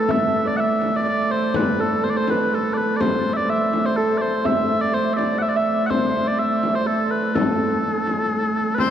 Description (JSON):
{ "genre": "medieval dance", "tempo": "124 BPM", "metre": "3/4", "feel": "straight", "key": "A minor", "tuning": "A4 = 439 Hz", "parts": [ { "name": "mellow small bagpipes", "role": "melody", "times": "0.0-8.9 s", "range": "C4 to F#5", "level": "-22 LUFS", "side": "left 1 dB", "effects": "none" }, { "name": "Celtic harp", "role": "second line", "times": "0.0-8.9 s", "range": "C4 to E5", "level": "-25 LUFS", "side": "right 2 dB", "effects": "none" }, { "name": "dark hurdy-gurdy", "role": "drone", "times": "0.0-8.9 s", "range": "A2", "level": "-25 LUFS", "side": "right 3 dB", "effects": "none" }, { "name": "frame drum", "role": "percussion", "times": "0.1-8.9 s", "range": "none", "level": "-25 LUFS", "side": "left 2 dB", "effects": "none" }, { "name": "edgy shawm", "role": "second line", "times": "8.8-8.9 s", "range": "C5", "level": "-20 LUFS", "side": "left 7 dB", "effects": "none" } ], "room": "wet church reverb, RT60 3.8 s", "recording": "dark, warm production", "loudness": "-18 LUFS", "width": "side -9 dB against mid", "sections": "0.0-8.8 A section", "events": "none", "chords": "none" }